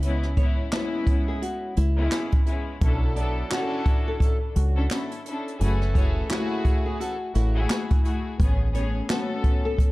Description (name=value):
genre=hip hop, boom-bap hip-hop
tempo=86 BPM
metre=4/4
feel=swing 60% on 16ths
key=F# minor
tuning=A4 = 440 Hz
part: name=warm studio string section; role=accompaniment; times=0.0-9.9 s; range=G#3 to A4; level=-30 LUFS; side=left 2 dB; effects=cassette tape, high-pass filter, low-pass filter
part: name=deep dub fingered electric bass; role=bass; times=0.0-9.0 s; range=F#1 to C#2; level=-23 LUFS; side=equal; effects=none
part: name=jazz brush drum kit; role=drums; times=0.0-9.9 s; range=handclaps, hi-hat, kick drum, snare drum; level=-23 LUFS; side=equal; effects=none
part: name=nylon-string guitar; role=melody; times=0.4-9.9 s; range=E4 to D5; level=-33 LUFS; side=left 1 dB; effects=high-pass filter, low-pass filter, slapback echo
part: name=clear horn section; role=stabs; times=2.8-7.6 s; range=C#3 to A4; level=-34 LUFS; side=right 2 dB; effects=high-pass filter, low-pass filter, slapback echo
room=little or no reverb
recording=dark, warm production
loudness=-22 LUFS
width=side -20 dB against mid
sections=0.0-9.9 A section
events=none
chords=0.0 C#m7; 2.8 Bm11; 5.6 F#m9; 8.4 Amaj9